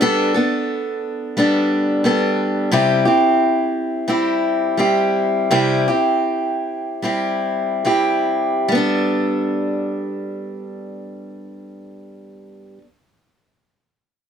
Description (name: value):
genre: folk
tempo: 68-89 BPM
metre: 4/4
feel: straight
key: G major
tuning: A4 = 440 Hz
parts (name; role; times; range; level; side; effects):
- picked steel-string acoustic guitar; accompaniment; 0.0-12.9 s; C3 to A4; -17 LUFS; equal; none
room: light reverb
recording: close, detailed microphones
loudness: -16 LUFS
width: side -8 dB against mid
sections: 0.0-8.7 A section; 8.7-12.3 B section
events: slowing down 2.7-8.7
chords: 0.0 Gadd9; 2.7 C; 8.7 Gadd9